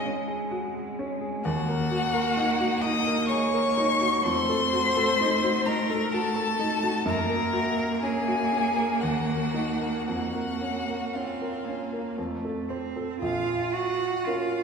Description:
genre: classical, slow romantic movement for piano quartet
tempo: 55-66 BPM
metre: 3/4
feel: rubato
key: Bb minor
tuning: A4 = 440 Hz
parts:
  - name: rich violin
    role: melody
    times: 0.0-14.6 s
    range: F5 to Eb6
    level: -28 LUFS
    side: left 4 dB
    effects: none
  - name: rich cello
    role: second line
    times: 0.0-14.6 s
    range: Ab3 to Gb4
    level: -30 LUFS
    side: right 3 dB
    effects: none
  - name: warm violin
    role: second line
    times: 0.0-14.6 s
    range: F4 to Gb5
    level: -32 LUFS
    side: left 1 dB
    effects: none
  - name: warm baby grand piano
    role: accompaniment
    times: 0.0-14.6 s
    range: Bb1 to C5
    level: -30 LUFS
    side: equal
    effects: none
room: wet concert hall reverb, RT60 2.1 s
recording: recorded in a church or concert hall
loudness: -24 LUFS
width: side -6 dB against mid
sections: 0.0-13.2 A section; 13.2-14.6 B section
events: none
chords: 0.0 Db/F; 1.4 Ebm; 4.2 F7b9; 7.1 Gb; 9.0 Ebm; 10.1 Bbm/F; 12.2 F; 13.2 Bbm

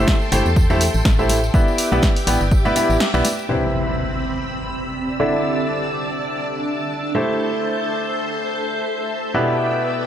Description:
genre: piano house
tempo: 123 BPM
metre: 4/4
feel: swing 56% on 16ths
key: C major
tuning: A4 = 440 Hz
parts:
  - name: string machine, violins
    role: sustained chords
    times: 0.0-10.1 s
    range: B3 to G6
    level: -26 LUFS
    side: equal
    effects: ensemble chorus, sidechain pumping
  - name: clear grand piano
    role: riff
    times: 0.0-10.1 s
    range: B2 to G5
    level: -21 LUFS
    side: equal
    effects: sidechain pumping, low-pass filter, ping-pong delay
  - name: organ-like FM bass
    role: bass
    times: 0.0-3.2 s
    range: G1 to E2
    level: -20 LUFS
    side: equal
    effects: sidechain pumping
  - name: electronic kick drum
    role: drums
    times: 0.1-2.6 s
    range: none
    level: -17 LUFS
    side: equal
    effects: none
  - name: punchy analog drum machine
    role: drums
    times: 0.1-3.4 s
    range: hi-hat, snare drum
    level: -23 LUFS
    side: equal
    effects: none
  - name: tambourine and congas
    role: percussion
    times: 0.1-3.5 s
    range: none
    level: -30 LUFS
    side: left 1 dB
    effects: none
  - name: impact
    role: sound effects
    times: 3.5-5.4 s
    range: none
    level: -29 LUFS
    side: equal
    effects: none
  - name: granular cloud pad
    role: texture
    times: 4.4-10.1 s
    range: B3 to E6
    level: -26 LUFS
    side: equal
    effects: built-in reverb, sidechain pumping
room: light reverb, digital ambience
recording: none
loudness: -17 LUFS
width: side -10 dB against mid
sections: 0.0-3.5 A section; 3.5-10.1 B section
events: break 3.0-3.5; band accent 3.0; impact 3.5-5.4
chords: 0.0 Am7; 1.5 Em7; 3.5 Cmaj7; 5.2 Dsus2; 7.1 Am7; 9.3 Em7/B

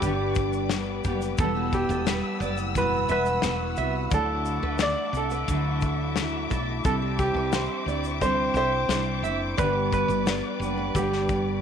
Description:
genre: acoustic pop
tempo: 88 BPM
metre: 4/4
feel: straight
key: G major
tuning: A4 = 437 Hz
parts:
  - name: clear upright piano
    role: melody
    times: 0.0-11.6 s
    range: G4 to D5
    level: -28 LUFS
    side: right 1 dB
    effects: slapback echo
  - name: fingerpicked steel-string acoustic guitar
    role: accompaniment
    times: 0.0-11.6 s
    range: E2 to G4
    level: -29 LUFS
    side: equal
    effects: double-tracked left and right
  - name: warm studio string section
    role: sustained chords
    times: 0.0-11.6 s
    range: A4 to E6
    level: -34 LUFS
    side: left 4 dB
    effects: none
  - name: fingerpicked steel-string acoustic guitar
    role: arpeggios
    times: 0.0-11.3 s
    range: G4 to E5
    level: -37 LUFS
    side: right 11 dB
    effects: none
  - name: woody fretless electric bass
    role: bass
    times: 0.0-11.6 s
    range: E1 to D2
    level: -31 LUFS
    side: equal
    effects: none
  - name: modern studio drum kit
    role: drums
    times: 0.0-11.5 s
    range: kick drum, shaker, snare drum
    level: -29 LUFS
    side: left 3 dB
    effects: none
room: light reverb, small room ambience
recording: 1960s-style stereo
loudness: -23 LUFS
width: side -8 dB against mid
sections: 0.0-11.6 A section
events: none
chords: 0.0 G; 1.4 Emadd9; 4.1 Dadd9; 6.8 Cadd9; 9.6 G

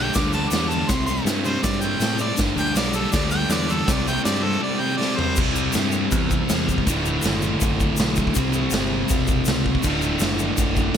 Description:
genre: garage rock duo or trio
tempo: 161 BPM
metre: 4/4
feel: straight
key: unclear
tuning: A4 = 440 Hz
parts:
  - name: bright harmonica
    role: melody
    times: 0.0-5.4 s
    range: A4 to D6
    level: -26 LUFS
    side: equal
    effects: overdrive
  - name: thick fuzz guitar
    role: riff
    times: 0.0-11.0 s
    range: D2 to C4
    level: -23 LUFS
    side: equal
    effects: distortion
  - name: growling picked electric bass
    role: bass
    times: 0.0-10.9 s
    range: D1 to A2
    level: -27 LUFS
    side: equal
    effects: overdrive
  - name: egg shaker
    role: percussion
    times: 0.1-10.9 s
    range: none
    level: -33 LUFS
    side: left 7 dB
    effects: none
  - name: raw garage drum kit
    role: drums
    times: 0.2-11.0 s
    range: crash cymbal, kick drum, snare drum, toms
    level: -24 LUFS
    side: equal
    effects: none
room: light reverb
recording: none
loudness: -19 LUFS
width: side -8 dB against mid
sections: 0.0-5.4 A section; 5.4-11.0 B section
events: drum fill 5.0-5.4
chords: 0.0 G5; 0.9 C5; 2.4 G; 3.9 C5; 5.4 C; 6.9 D; 8.3 C; 9.8 D

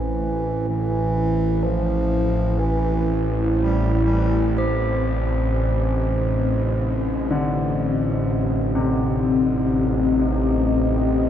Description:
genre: dark ambient drone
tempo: 62 BPM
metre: 4/4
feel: straight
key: unclear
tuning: A4 = 440 Hz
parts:
  - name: mellow bass clarinet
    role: melody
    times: 0.0-4.5 s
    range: E3 to G3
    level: -27 LUFS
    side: right 2 dB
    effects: dub echo
  - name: dark analog pad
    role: sustained chords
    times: 0.0-11.3 s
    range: A3 to Eb5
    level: -24 LUFS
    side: left 2 dB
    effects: chorus, phaser
  - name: bowed-like drone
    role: drone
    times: 0.0-11.3 s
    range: A1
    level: -22 LUFS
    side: equal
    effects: built-in reverb
  - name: quartz singing bowl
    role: texture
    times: 0.0-11.3 s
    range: C5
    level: -33 LUFS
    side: right 3 dB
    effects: none
  - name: warm concert grand piano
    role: arpeggios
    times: 7.3-11.3 s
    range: C3 to D3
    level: -25 LUFS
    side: left 2 dB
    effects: dub echo
room: moderate plate reverb, RT60 2.7 s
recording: echo-heavy mix, nothing above 7.8 kHz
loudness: -19 LUFS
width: side -10 dB against mid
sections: 0.0-11.3 A section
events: none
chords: 0.0 Am; 4.6 Cm

